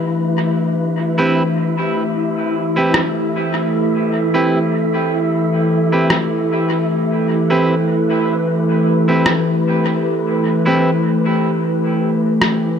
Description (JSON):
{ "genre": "ambient dub", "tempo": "76 BPM", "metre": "4/4", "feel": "swing 57% on 16ths", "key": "unclear", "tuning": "A4 = 440 Hz", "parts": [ { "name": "warbly tape-like pad", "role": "sustained chords", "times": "0.0-12.8 s", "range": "E3 to B4", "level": "-16 LUFS", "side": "equal", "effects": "chorus, built-in reverb" }, { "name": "wind-like tuned noise texture", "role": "texture", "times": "0.0-12.8 s", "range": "E4 to E5", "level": "-25 LUFS", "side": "left 1 dB", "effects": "built-in reverb" }, { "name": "semi-hollow electric guitar", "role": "stabs", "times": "1.2-10.9 s", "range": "C4 to B4", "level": "-21 LUFS", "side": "right 2 dB", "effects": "dub echo" }, { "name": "electronic rim click", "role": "drums", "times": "2.9-12.6 s", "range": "none", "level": "-22 LUFS", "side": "equal", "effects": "low-pass filter on snare, low-pass filter on room, dub echo" } ], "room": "moderate echo chamber reverb, RT60 2.1 s", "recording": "echo-heavy mix", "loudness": "-14 LUFS", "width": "side -7 dB against mid", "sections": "0.0-12.8 A section", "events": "none", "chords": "0.0 Am9", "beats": "| 0.57 1.36 2.15 2.94 | 3.73 4.52 5.31 6.10 | 6.89 7.68 8.47 9.26 | 10.05 10.84 11.62 12.41" }